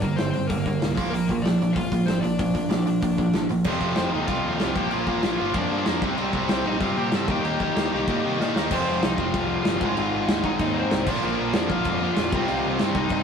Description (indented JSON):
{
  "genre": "punk rock",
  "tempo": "190 BPM",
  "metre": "4/4",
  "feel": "straight",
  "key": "unclear",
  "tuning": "A4 = 440 Hz",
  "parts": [
    { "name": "smooth overdriven lead guitar", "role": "melody", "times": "0.0-13.2 s", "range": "Bb3 to A5", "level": "-29 LUFS", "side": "left 4 dB", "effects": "none" },
    { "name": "cranked stack guitar", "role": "riff", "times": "0.0-13.2 s", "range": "F2 to Eb4", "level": "-26 LUFS", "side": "right 4 dB", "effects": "overdrive" },
    { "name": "distorted electric guitar", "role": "riff", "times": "0.0-13.2 s", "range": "F2 to Eb4", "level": "-31 LUFS", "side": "left 5 dB", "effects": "overdrive" },
    { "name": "growling picked electric bass", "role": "bass", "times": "0.0-13.2 s", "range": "F1 to C3", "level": "-32 LUFS", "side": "left 1 dB", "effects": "overdrive" },
    { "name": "loose indie drum kit", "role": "drums", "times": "0.0-13.2 s", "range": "crash cymbal, hi-hat, kick drum, snare drum", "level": "-27 LUFS", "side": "equal", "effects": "none" },
    { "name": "distorted electric guitar", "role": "riff", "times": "3.7-13.2 s", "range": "F2 to F4", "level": "-29 LUFS", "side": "left 2 dB", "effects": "distortion" }
  ],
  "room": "light reverb",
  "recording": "rough rehearsal-room recording",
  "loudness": "-21 LUFS",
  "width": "side -6 dB against mid",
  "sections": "0.0-3.7 A section; 3.7-8.7 B section; 8.7-13.2 C section",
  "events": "drum fill 8.4-8.7",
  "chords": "0.0 Gm; 1.0 Bb; 3.7 F; 4.8 Bb; 6.0 Cm; 7.3 Eb; 8.7 Fm; 9.8 Ab; 11.1 Bb; 12.3 Cm"
}